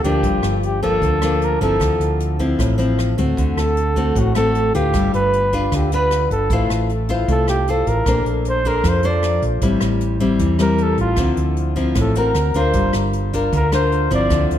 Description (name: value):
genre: bossa nova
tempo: 154 BPM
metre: 4/4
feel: straight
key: D minor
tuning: A4 = 440 Hz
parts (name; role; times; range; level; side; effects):
- warm flugelhorn; melody; 0.0-14.5 s; F4 to D5; -21 LUFS; equal; ping-pong delay
- nylon-string guitar; accompaniment; 0.0-14.6 s; G2 to C5; -20 LUFS; left 3 dB; none
- hollow-body short-scale fingered electric bass; bass; 0.0-14.6 s; G1 to F2; -20 LUFS; right 1 dB; none
- jazz brush drum kit; drums; 0.0-14.6 s; hi-hat, kick drum, rim click; -26 LUFS; equal; none
room: moderate plate reverb, RT60 1.4 s, small room ambience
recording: dreamy mix soaked in reverb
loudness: -15 LUFS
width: side -10 dB against mid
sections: 0.0-14.6 A section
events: flugelhorn solo 0.0-14.6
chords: 0.2 Gm7; 1.8 Dm9; 3.4 D7; 4.9 G7; 6.5 Fmaj7/A; 8.1 Bbmaj9; 9.6 Am7; 11.2 Dm9; 12.4 D7b13; 12.7 Gm7